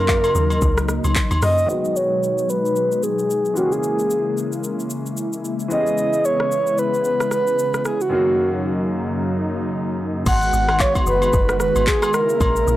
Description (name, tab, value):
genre	amapiano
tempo	112 BPM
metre	4/4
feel	swing 58% on 16ths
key	G# minor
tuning	A4 = 441 Hz
part	breathy flute-like synth lead	melody	0.0-12.8 s	F#4 to F#5	-20 LUFS	right 1 dB	chorus, low-pass filter
part	warm analog pad	sustained chords	0.0-12.8 s	F#2 to F#4	-25 LUFS	left 1 dB	chorus, sidechain pumping, low-pass filter
part	deep log drum bass	bass	0.0-1.7, 10.3-12.8 s	F#1 to F#2	-21 LUFS	equal	none
part	deep house drum kit	drums	0.1-12.8 s	crash cymbal, handclaps, hi-hat, kick drum, rim click, shaker	-23 LUFS	equal	none
part	woodblock and agogo bells	percussion	0.1-1.4, 10.3-12.6 s	none	-26 LUFS	left 2 dB	none
part	clear baby grand piano	accompaniment	1.7-10.3 s	F#2 to G#4	-27 LUFS	left 2 dB	low-pass filter
room	digital ambience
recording	dry, gritty hardware recording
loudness	-17 LUFS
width	side -14 dB against mid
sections	0.0-1.7 A section; 1.7-10.3 B section; 10.3-12.8 A section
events	drop 0.0-1.7, 10.3-12.8; filter sweep 1.7-10.3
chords	0.0 D#m7; 1.7 G#m7; 3.6 A#m7b5; 5.7 E6; 8.1 D#m7/F#; 10.3 G#m7; 12.1 A#m7b5